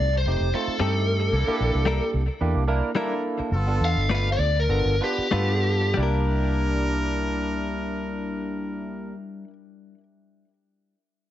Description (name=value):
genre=blues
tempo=90-113 BPM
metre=4/4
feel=swing 54% on 16ths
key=C mixolydian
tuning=A4 = 441 Hz
part: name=biting lead guitar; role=melody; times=0.0-6.0 s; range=G4 to F5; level=-26 LUFS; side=left 1 dB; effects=overdrive
part: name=barky tine electric piano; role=accompaniment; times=0.0-9.1 s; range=A3 to B4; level=-29 LUFS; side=right 4 dB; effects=analog chorus
part: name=vintage muted fingered electric bass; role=bass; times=0.0-9.1 s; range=F1 to G2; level=-24 LUFS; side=equal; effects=none
part: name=clear horn section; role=sustained chords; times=0.8-9.2 s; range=Bb3 to Bb4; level=-33 LUFS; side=equal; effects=none
part: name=direct-recorded clean electric guitar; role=stabs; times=0.8-9.5 s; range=G3 to B4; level=-30 LUFS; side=left 5 dB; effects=digital delay
room=light reverb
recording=nothing above 7.9 kHz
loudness=-22 LUFS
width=side -12 dB against mid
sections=0.0-6.0 A section; 6.0-11.3 B section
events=lead electric guitar solo 0.0-6.0; slowing down 1.3-6.0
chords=0.0 F9; 1.3 C9; 3.5 G9; 6.0 C9